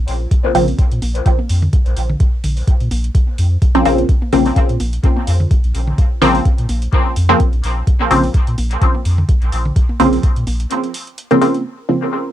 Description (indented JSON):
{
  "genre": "dub techno",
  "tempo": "127 BPM",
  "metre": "4/4",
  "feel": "swing 55% on 16ths",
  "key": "Bb minor",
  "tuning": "A4 = 440 Hz",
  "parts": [
    { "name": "soft dub sub bass", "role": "bass", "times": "0.0-10.7 s", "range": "Bb1 to Bb2", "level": "-17 LUFS", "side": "equal", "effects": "sidechain pumping" },
    { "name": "electronic hi-hat", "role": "drums", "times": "0.1-11.6 s", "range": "none", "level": "-33 LUFS", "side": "right 2 dB", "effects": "overdrive, low-pass filter on hats, cassette tape, low-pass filter on room" },
    { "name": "electronic kick drum", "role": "drums", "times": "0.3-10.3 s", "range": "none", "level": "-14 LUFS", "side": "equal", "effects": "overdrive, cassette tape" },
    { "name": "electronic toms", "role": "percussion", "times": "0.4-10.6 s", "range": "none", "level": "-27 LUFS", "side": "equal", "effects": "sidechain pumping on toms, cassette tape, dub echo" },
    { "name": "filtered dub chord stab", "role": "stabs", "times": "0.5-0.7, 3.7-12.0 s", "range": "Db3 to C4", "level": "-15 LUFS", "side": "equal", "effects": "chorus, phaser, sidechain pumping, dub echo" },
    { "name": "wind-like tuned noise texture", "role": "texture", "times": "11.8-12.3 s", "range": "Bb4", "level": "-36 LUFS", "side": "right 3 dB", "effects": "none" }
  ],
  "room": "light reverb",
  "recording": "home recording on cassette",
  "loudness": "-13 LUFS",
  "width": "side -12 dB against mid",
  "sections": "0.0-11.7 A section",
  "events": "none",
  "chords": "0.0 Bbmadd9"
}